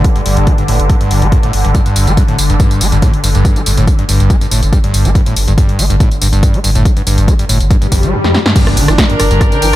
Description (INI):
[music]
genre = driving peak-time techno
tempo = 141 BPM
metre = 4/4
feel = straight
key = G minor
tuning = A4 = 440 Hz
[part]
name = screaming distorted acid line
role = riff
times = 0.0-9.7 s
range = F2 to Bb3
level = -15 LUFS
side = equal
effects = distortion, analog chorus, sidechain pumping, digital delay
[part]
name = saturated sub bass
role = bass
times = 0.0-9.8 s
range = G1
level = -14 LUFS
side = equal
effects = overdrive, sidechain pumping, low-pass filter
[part]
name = swarming drone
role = drone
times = 0.0-9.8 s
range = G2 to D3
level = -20 LUFS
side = left 1 dB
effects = built-in reverb, sidechain pumping
[part]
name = electronic kick drum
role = drums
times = 0.0-9.5 s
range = none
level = -11 LUFS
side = equal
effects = overdrive
[part]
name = punchy analog drum machine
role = drums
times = 0.0-9.8 s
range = crash cymbal, hi-hat, rim click, snare drum, tambourine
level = -18 LUFS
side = equal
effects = overdrive
[part]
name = swell and impact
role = sound effects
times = 7.8-9.8 s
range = none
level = -19 LUFS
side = left 1 dB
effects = none
[part]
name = rich chamber string section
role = texture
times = 8.6-9.8 s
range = D4 to G5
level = -15 LUFS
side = equal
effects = sidechain pumping
[sound]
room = light reverb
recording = none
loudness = -9 LUFS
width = side -15 dB against mid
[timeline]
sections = 0.0-8.6 A section; 8.6-9.8 B section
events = swell 7.8-8.6; drum fill 8.2-8.6; band accent 8.4; drop 8.6-9.8; impact 8.6-9.8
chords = 0.0 G5; 8.6 Gm